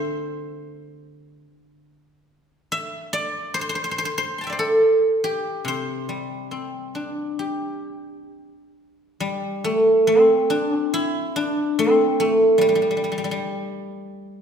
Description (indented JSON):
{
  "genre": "chinese traditional, Chinese solo plucked strings",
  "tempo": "71 BPM",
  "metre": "4/4",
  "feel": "rubato",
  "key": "C gong mode",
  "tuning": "A4 = 443 Hz",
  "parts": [
    { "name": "guzheng", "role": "solo", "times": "0.0-14.4 s", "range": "C3 to C6", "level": "-20 LUFS", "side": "equal", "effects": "none" }
  ],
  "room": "moderate scoring stage reverb, RT60 1.7 s",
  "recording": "recorded in a church or concert hall",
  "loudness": "-19 LUFS",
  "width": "side -7 dB against mid",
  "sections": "0.0-9.2 A section; 9.2-14.4 B section",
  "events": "none",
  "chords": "none",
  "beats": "0.62 1.45 | 2.28 3.12 3.96 4.80 | 5.66 6.51 7.38 8.29 | 9.20 10.08 10.94 11.78 | 12.61 13.45 14.29"
}